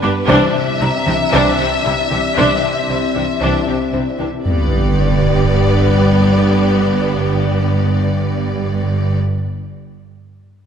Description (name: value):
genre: cinematic, hybrid orchestral and electronic film score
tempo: 115 BPM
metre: 4/4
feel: straight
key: unclear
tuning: A4 = 440 Hz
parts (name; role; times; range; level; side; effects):
- warm symphonic violin section; melody; 0.0-9.2 s; B4 to E5; -22 LUFS; left 5 dB; none
- warm symphonic violin section; second line; 0.0-9.2 s; D4 to G4; -26 LUFS; left 3 dB; none
- warm symphonic viola section; accompaniment; 0.0-9.2 s; B3 to D4; -23 LUFS; right 1 dB; none
- warbly tape-like pad; sustained chords; 0.0-9.2 s; B3 to D5; -24 LUFS; left 2 dB; chorus, built-in reverb
- resonant blip pluck; arpeggios; 0.0-4.4 s; C3 to C4; -26 LUFS; left 4 dB; phaser
- clear symphonic cello section; bass; 0.0-9.2 s; G2 to C3; -21 LUFS; right 1 dB; none
- warm symphonic double bass section; bass; 0.0-9.2 s; G1 to C2; -19 LUFS; right 2 dB; none
- bright concert grand piano; texture; 0.0-4.5 s; C5 to C6; -30 LUFS; left 1 dB; ping-pong delay
- mellow French horn section; sustained chords; 0.3-9.2 s; D4 to C5; -24 LUFS; left 2 dB; none
- warm trombone section; sustained chords; 0.3-9.2 s; D3 to G3; -25 LUFS; right 3 dB; none
- sub drop; sound effects; 4.5-6.5 s; none; -20 LUFS; equal; none
room: wet scoring stage reverb, RT60 2.1 s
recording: none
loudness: -13 LUFS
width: side -8 dB against mid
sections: 0.0-4.5 A section; 4.5-8.6 B section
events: impact 4.5-6.5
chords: 0.3 Cadd9; 4.5 G